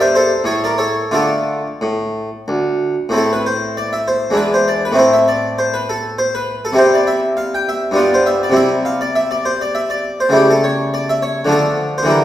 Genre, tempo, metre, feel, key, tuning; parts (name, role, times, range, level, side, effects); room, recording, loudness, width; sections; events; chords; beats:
classical, baroque-style suite movement for harpsichord; 85-103 BPM; 3/4; rubato; D minor, A minor from 3.1 s; A4 = 439 Hz
harpsichord; solo; 0.0-12.2 s; D2 to G5; -14 LUFS; equal
wet recital hall reverb, RT60 1.3 s; heard from further back in the room, faint mains hum; -14 LUFS; side -12 dB against mid
0.0-3.1 A section; 3.1-12.2 A section
0.4 A; 1.1 Dm; 3.1 Am; 4.3 E7; 5.0 Am; 6.8 C; 7.9 G7; 8.5 C; 10.3 A7/C#; 11.5 Dm
0.45 | 1.12 1.82 2.48 | 3.13 3.75 4.35 | 4.96 5.57 6.17 | 6.76 7.36 7.95 | 8.54 9.13 9.73 | 10.32 10.91 11.50 | 12.10